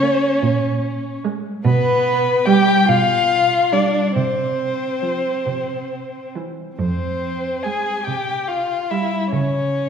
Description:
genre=classical, slow romantic movement for string quartet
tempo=47 BPM (dotted quarters)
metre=6/8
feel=uneven beats, rubato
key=F minor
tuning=A4 = 440 Hz
part: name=muted violin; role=melody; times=0.0-9.9 s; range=B4 to Ab5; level=-20 LUFS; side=left 3 dB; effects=none
part: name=muted violin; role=second line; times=0.0-9.9 s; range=B3 to Ab4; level=-23 LUFS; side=right 1 dB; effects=none
part: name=muted viola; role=accompaniment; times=0.0-9.2 s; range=E3 to Bb3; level=-22 LUFS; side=right 3 dB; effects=none
part: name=muted cello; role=bass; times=0.0-9.9 s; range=F2 to Db3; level=-23 LUFS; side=right 3 dB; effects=none
room=wet scoring stage reverb, RT60 1.6 s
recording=heard from further back in the room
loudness=-17 LUFS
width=side -7 dB against mid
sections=0.0-9.9 A section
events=none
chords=0.4 Bbm7; 1.6 G7/B; 4.2 F5/C; 5.5 C; 6.8 Fm; 8.1 C5; 9.3 N.C.

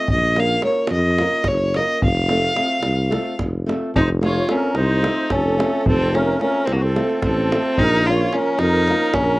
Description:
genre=balkan folk, Balkan wedding band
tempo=218 BPM (eighths)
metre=7/8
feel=straight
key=unclear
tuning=A4 = 442 Hz
part: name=rich fiddle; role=melody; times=0.0-9.4 s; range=Bb3 to F5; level=-20 LUFS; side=equal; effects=cassette tape
part: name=flamenco guitar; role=accompaniment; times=0.0-9.1 s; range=F3 to Bb4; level=-24 LUFS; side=equal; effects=cassette tape
part: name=mellow tuba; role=bass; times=0.1-9.4 s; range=F1 to F2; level=-20 LUFS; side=equal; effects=tube saturation
part: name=davul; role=percussion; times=0.1-9.3 s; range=none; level=-25 LUFS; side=right 1 dB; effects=none
part: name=musette accordion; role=second line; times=4.0-9.4 s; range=Gb4 to Db5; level=-25 LUFS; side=right 2 dB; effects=cassette tape
room=light reverb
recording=home recording on cassette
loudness=-16 LUFS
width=side -20 dB against mid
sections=0.0-3.9 A section; 3.9-9.4 A section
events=none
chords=0.1 Bbm; 2.0 F; 7.8 Bbm

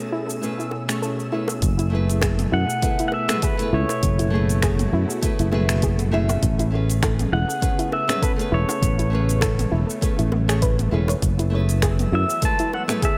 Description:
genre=sunset chillout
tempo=100 BPM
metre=4/4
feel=swing 56% on 16ths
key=F# minor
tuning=A4 = 439 Hz
part: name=nylon-string guitar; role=accompaniment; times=0.0-13.2 s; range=G#3 to E5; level=-31 LUFS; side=equal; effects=analog delay
part: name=soft string machine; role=sustained chords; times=0.0-13.2 s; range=B2 to G#4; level=-34 LUFS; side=equal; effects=ensemble chorus
part: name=deep house drum kit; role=drums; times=0.0-13.2 s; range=finger snaps, hi-hat, shaker, toms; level=-31 LUFS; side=equal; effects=overdrive
part: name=twinkling granular texture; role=texture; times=0.0-1.6, 11.5-13.2 s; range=E6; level=-43 LUFS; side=equal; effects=built-in reverb
part: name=soft round pluck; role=arpeggios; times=0.1-13.2 s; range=E4 to C#5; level=-32 LUFS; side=equal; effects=chorus, analog delay
part: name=bongos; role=percussion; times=0.7-12.9 s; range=none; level=-35 LUFS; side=equal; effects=none
part: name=sustaining fretless electric bass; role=bass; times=1.6-12.2 s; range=E1 to F#2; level=-23 LUFS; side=equal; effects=none
part: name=electronic kick drum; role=drums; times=1.6-13.2 s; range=none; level=-26 LUFS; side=equal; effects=overdrive
part: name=pedal steel guitar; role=melody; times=2.5-13.2 s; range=B4 to A5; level=-29 LUFS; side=equal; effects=analog delay
room=light reverb, digital ambience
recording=echo-heavy mix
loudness=-21 LUFS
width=mono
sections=0.0-1.6 A section; 1.6-13.2 B section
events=filter sweep on synth arpeggio sound 0.0-1.6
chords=0.0 Amaj9; 1.6 F#m11; 6.4 Amaj9; 11.2 F#m11

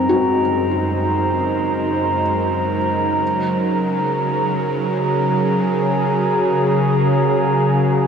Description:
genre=ambient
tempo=free time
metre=none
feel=none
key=Gb lydian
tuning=A4 = 440 Hz
part: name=warm analog pad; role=sustained chords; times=0.0-8.1 s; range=Gb2 to C5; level=-18 LUFS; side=right 1 dB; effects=lush chorus
part: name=felt-muted upright piano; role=arpeggios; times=0.0-3.2 s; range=C4 to Ab5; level=-22 LUFS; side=left 3 dB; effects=tape echo
part: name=bowed-like drone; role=drone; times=0.0-8.1 s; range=Db3 to Gb3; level=-26 LUFS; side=right 1 dB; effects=built-in reverb
part: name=glass harmonica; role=texture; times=0.0-8.1 s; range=Bb5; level=-22 LUFS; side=right 1 dB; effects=none
room=wet huge ambient reverb, RT60 8.1 s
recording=none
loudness=-16 LUFS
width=side -6 dB against mid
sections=0.0-8.1 A section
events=fade-in on analog synth pad 0.0-8.1; fade-in on synth drone 0.0-8.1; fade-out on felt piano 0.0-8.1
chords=0.0 Ab9/Gb; 3.2 Gbadd9

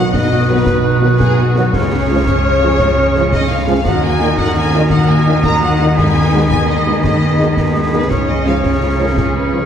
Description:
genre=cinematic, heroic adventure film score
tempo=113 BPM (dotted quarters)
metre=12/8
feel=straight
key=unclear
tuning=A4 = 435 Hz
part: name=warm symphonic violin section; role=melody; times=0.0-9.7 s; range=F#4 to A#5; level=-26 LUFS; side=left 2 dB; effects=none
part: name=bright oboe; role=second line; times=0.0-9.7 s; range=A#5 to D#6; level=-27 LUFS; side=right 2 dB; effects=none
part: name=clear clarinet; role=second line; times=0.0-9.7 s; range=F#4 to A#4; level=-27 LUFS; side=left 2 dB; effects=none
part: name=concert flute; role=second line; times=0.0-9.7 s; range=D#6 to F#6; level=-23 LUFS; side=right 1 dB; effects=none
part: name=warm symphonic violin section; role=second line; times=0.0-9.7 s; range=F#4 to A#5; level=-20 LUFS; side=left 2 dB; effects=none
part: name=dark symphonic viola section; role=accompaniment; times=0.0-9.7 s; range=F#3 to B4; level=-22 LUFS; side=right 1 dB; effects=none
part: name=dark French horn section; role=sustained chords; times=0.0-9.6 s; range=G#3 to G#4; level=-24 LUFS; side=left 3 dB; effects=none
part: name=mellow trombone section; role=sustained chords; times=0.0-9.6 s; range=G#2 to F#3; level=-24 LUFS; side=right 2 dB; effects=none
part: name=concert harp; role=arpeggios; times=0.0-9.7 s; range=B2 to C#6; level=-23 LUFS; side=left 3 dB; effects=none
part: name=warm symphonic cello section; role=bass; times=0.0-9.7 s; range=B2 to D#3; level=-20 LUFS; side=right 1 dB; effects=none
part: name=warm symphonic double bass section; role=bass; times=0.0-9.7 s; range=B1 to D#2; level=-17 LUFS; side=right 1 dB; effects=none
part: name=concert snare drum, concert bass drum and clash cymbals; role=drums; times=0.1-9.3 s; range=none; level=-21 LUFS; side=equal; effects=none
room=wet scoring stage reverb, RT60 1.6 s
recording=heard from further back in the room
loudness=-11 LUFS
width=side -8 dB against mid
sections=0.0-9.7 A section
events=none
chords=0.0 B; 1.8 C#; 3.9 D#m; 6.0 G#m/D#; 8.1 C#

